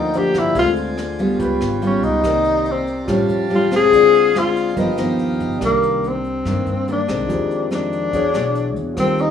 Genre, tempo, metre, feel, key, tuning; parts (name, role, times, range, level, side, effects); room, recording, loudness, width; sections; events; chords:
bossa nova; 142 BPM; 4/4; straight; C minor; A4 = 440 Hz
mellow tenor saxophone; melody; 0.0-9.3 s; Bb3 to Ab4; -17 LUFS; left 3 dB; plate reverb
nylon-string guitar; accompaniment; 0.0-9.3 s; F2 to C#5; -22 LUFS; left 1 dB; plate reverb
warm grand piano; accompaniment; 0.0-9.3 s; D4 to D#5; -27 LUFS; right 3 dB; plate reverb
pedal harmonium; sustained chords; 0.0-5.6 s; F4 to C6; -28 LUFS; equal; plate reverb
upright bass; bass; 0.0-9.3 s; G1 to G2; -27 LUFS; right 1 dB
vintage brush drum kit; drums; 0.1-9.3 s; hi-hat, kick drum, rim click; -33 LUFS; equal
moderate small room reverb, RT60 0.6 s; rough home demo mix, studio ambience; -16 LUFS; side -8 dB against mid
0.0-5.6 A section; 5.6-9.3 B section
tenor saxophone solo 0.0-5.6
0.0 Gm7; 0.6 Dm7b5; 1.4 Db7#11; 2.2 Cm9; 3.1 A7alt; 3.9 Dm7b5; 4.8 G7alt; 5.6 Cm9; 7.3 Fm7; 8.1 E13